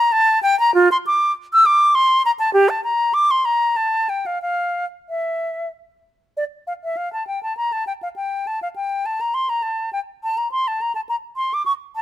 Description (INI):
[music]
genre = classical, baroque-style fantasia for unaccompanied flute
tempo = 89-106 BPM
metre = 3/4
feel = rubato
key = unclear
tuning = A4 = 444 Hz
[part]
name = silver concert flute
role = solo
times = 0.0-12.0 s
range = F4 to E6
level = -17 LUFS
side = equal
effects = none
[sound]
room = little or no reverb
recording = close, detailed microphones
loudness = -17 LUFS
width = side -13 dB against mid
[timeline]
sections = 0.0-6.4 A section; 6.4-12.0 B section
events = none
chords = none